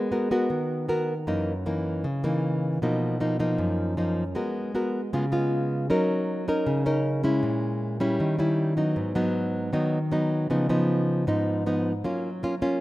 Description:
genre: bossa nova.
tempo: 156 BPM.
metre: 4/4.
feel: straight.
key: unclear.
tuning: A4 = 439 Hz.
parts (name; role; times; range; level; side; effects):
nylon-string guitar; solo; 0.0-12.8 s; Gb2 to Bb4; -23 LUFS; equal; none.
room: moderate lush hall reverb, RT60 2.4 s.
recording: rough home demo mix.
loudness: -23 LUFS.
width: side -17 dB against mid.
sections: 0.0-12.8 A section.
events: none.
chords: 0.0 Abm9; 1.3 Gb6; 2.8 Bmaj7#11; 4.4 Abm9; 5.1 Db7; 5.9 Gb6; 7.4 Bbm7b5; 8.2 Eb7b9; 9.0 Abm7; 10.5 Db9; 12.0 Gbmaj7.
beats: 0.12 0.50 0.89 | 1.27 1.66 2.04 2.43 | 2.81 3.20 3.59 3.97 | 4.36 4.74 5.12 5.51 | 5.89 6.28 6.66 7.05 | 7.43 7.82 8.20 8.58 | 8.97 9.35 9.73 10.12 | 10.50 10.89 11.27 11.65 | 12.04 12.42.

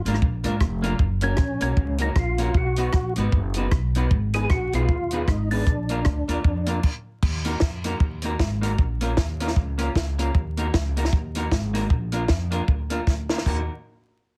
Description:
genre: ska.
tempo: 154 BPM.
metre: 4/4.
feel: swing 58% on 8ths.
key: Eb minor.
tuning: A4 = 440 Hz.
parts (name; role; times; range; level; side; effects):
upright bass; bass; 0.0-13.7 s; F1 to Ab2; -28 LUFS; equal; none.
electric guitar through a small old amp; accompaniment; 0.1-13.6 s; Bb3 to B4; -32 LUFS; equal; slapback echo.
compact cocktail drum kit; drums; 0.1-13.6 s; crash cymbal, hi-hat, kick drum, rim click, snare drum, splash cymbal; -26 LUFS; equal; none.
percussive tonewheel organ; melody; 1.2-6.8 s; Db4 to Ab4; -30 LUFS; equal; chorus vibrato, slow rotary speaker, slapback echo.
room: light reverb.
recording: heavily compressed radio sound, vinyl crackle.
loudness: -24 LUFS.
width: mono.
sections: 0.0-7.2 A section; 7.2-13.5 B section.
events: stop 6.8-7.2; drum fill 13.1-13.5.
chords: 0.0 Bb; 1.0 Gb; 2.5 B; 4.1 Abm; 5.7 Bb; 7.2 Ebm; 8.8 Bbm; 10.3 Ebm; 11.9 Bb; 13.5 Ebm.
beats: 0.22 0.61 | 0.99 1.38 1.77 2.16 | 2.55 2.94 3.33 3.72 | 4.11 4.50 4.89 5.28 | 5.67 6.05 6.45 6.83 | 7.22 7.62 8.01 8.39 | 8.78 9.17 9.56 9.95 | 10.34 10.73 11.12 11.51 | 11.90 12.29 12.68 13.07 | 13.46.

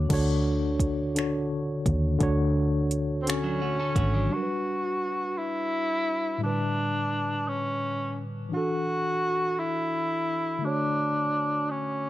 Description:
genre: slow six-eight R&B.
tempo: 57 BPM (dotted quarters).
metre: 6/8.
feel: straight.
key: D major.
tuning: A4 = 439 Hz.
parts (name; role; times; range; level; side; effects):
tine electric piano; accompaniment; 0.0-12.1 s; A2 to C#5; -29 LUFS; left 1 dB; medium stereo tremolo.
vintage muted fingered electric bass; bass; 0.0-4.3 s; G#1 to Eb2; -27 LUFS; equal; none.
smooth R&B drum kit; drums; 0.1-4.1 s; crash cymbal, finger snaps, hi-hat, kick drum; -28 LUFS; equal; overdrive.
breathy tenor saxophone; melody; 3.2-12.1 s; C4 to F#4; -28 LUFS; equal; none.
clean electric guitar; second line; 3.4-4.5 s; F#3 to A4; -35 LUFS; right 5 dB; spring reverb.
room: light reverb.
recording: none.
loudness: -25 LUFS.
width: side -15 dB against mid.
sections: 0.1-4.3 A section; 4.3-12.1 B section.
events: none.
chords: 0.1 Dmaj7; 4.3 Gmaj7; 6.4 A9sus4; 8.5 E9sus4; 10.6 Dmaj7.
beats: | 0.09 1.15 | 2.20 3.25 | 4.30 5.36 | 6.41 7.46 | 8.51 9.57 | 10.62 11.67.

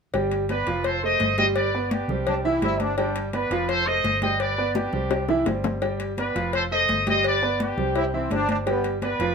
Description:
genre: latin, salsa.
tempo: 169 BPM.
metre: 4/4.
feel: straight.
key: G major.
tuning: A4 = 440 Hz.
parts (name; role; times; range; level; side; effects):
clear concert grand piano; accompaniment; 0.1-9.3 s; E3 to G5; -26 LUFS; right 2 dB; none.
hollow-body short-scale fingered electric bass; bass; 0.1-9.3 s; F1 to C2; -30 LUFS; equal; none.
congas; percussion; 0.1-9.3 s; none; -32 LUFS; left 2 dB; none.
cowbell and bongos; percussion; 0.1-9.3 s; none; -30 LUFS; left 7 dB; none.
warm trumpet section; melody; 0.5-9.3 s; D4 to Eb5; -24 LUFS; equal; none.
bright trombone section; second line; 2.3-3.2, 8.0-8.9 s; B3 to E4; -27 LUFS; left 1 dB; none.
room: moderate studio reverb, RT60 0.7 s.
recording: minimal, uncompressed stereo recording.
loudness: -21 LUFS.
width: side -5 dB against mid.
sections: 0.1-9.3 A section.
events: drum fill 4.8-5.8.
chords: 0.1 G; 0.9 F7; 1.6 G; 2.3 Cadd9; 3.0 G; 3.7 F7; 4.4 G; 5.1 Cadd9; 5.8 G; 6.5 F7; 7.2 G; 8.0 Cadd9; 8.7 G.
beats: | 0.14 0.50 0.85 1.21 | 1.56 1.92 2.27 2.63 | 2.98 3.34 3.69 4.05 | 4.40 4.76 5.11 5.47 | 5.82 6.18 6.53 6.89 | 7.24 7.60 7.95 8.31 | 8.66 9.02.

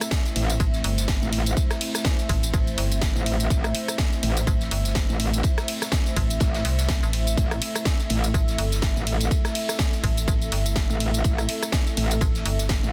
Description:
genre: bass house.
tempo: 124 BPM.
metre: 4/4.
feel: swing 57% on 16ths.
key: A minor.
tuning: A4 = 441 Hz.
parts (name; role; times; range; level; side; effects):
dark analog pad; sustained chords; 0.0-12.9 s; A3 to C5; -36 LUFS; equal; chorus, sidechain pumping.
house drum kit; drums; 0.0-12.9 s; hi-hat, ride cymbal, rim click, snare drum, tambourine; -31 LUFS; equal; none.
vintage drum kit; drums; 0.0-12.8 s; hi-hat, ride cymbal, snare drum; -40 LUFS; equal; sidechain pumping on cymbals, high-pass filter on cymbals, sidechain pumping on hats, high-pass filter on hats, high-pass filter on snare, high-pass filter on room.
deep dark ambient pad; texture; 0.0-12.9 s; E5; -38 LUFS; equal; chorus, built-in reverb, sidechain pumping.
electronic kick drum; drums; 0.1-12.8 s; none; -26 LUFS; equal; none.
metallic wobble bass; bass; 0.4-12.9 s; A1; -26 LUFS; equal; chorus, overdrive, sidechain pumping.
metallic FM bass; bass; 0.6-12.8 s; G1 to C2; -28 LUFS; equal; sidechain pumping.
room: light reverb, small room ambience.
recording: dense, heavily limited modern master.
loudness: -24 LUFS.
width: mono.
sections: 0.0-12.9 A section.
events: none.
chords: 0.0 Am.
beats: 0.12 0.60 1.08 | 1.57 2.05 2.54 3.02 | 3.50 3.99 4.47 4.96 | 5.44 5.92 6.41 6.89 | 7.38 7.86 8.34 8.83 | 9.31 9.79 10.28 10.76 | 11.25 11.73 12.21 12.70.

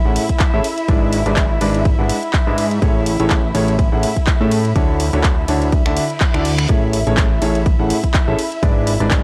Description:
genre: piano house.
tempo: 124 BPM.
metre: 4/4.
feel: swing 56% on 16ths.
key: A major.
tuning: A4 = 440 Hz.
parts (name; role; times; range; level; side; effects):
dark studio violin section; sustained chords; 0.0-9.2 s; E4 to E5; -27 LUFS; equal; sidechain pumping.
fat analog bass; bass; 0.0-9.2 s; G#1 to A2; -22 LUFS; equal; sidechain pumping.
clear concert grand piano; riff; 0.1-9.2 s; A2 to F#5; -23 LUFS; equal; sidechain pumping, analog delay.
house drum kit; drums; 0.2-9.2 s; finger snaps, handclaps, hi-hat, ride cymbal; -27 LUFS; equal; overdrive.
electronic kick drum; drums; 0.3-9.2 s; none; -19 LUFS; equal; overdrive.
reverse cymbal; sound effects; 6.1-6.7 s; none; -32 LUFS; equal; none.
room: little or no reverb.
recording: dry, gritty hardware recording.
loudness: -16 LUFS.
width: mono.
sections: 0.0-9.2 A section.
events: reverse cymbal 6.1-6.7.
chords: 0.0 Amaj7; 0.6 E7/G#; 2.8 Amaj7; 4.8 Dmaj9; 6.7 Amaj7; 8.4 E7/G#.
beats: 0.40 | 0.89 1.37 1.85 2.34 | 2.82 3.31 3.79 4.27 | 4.76 5.24 5.72 6.21 | 6.69 7.18 7.66 8.14 | 8.63 9.11.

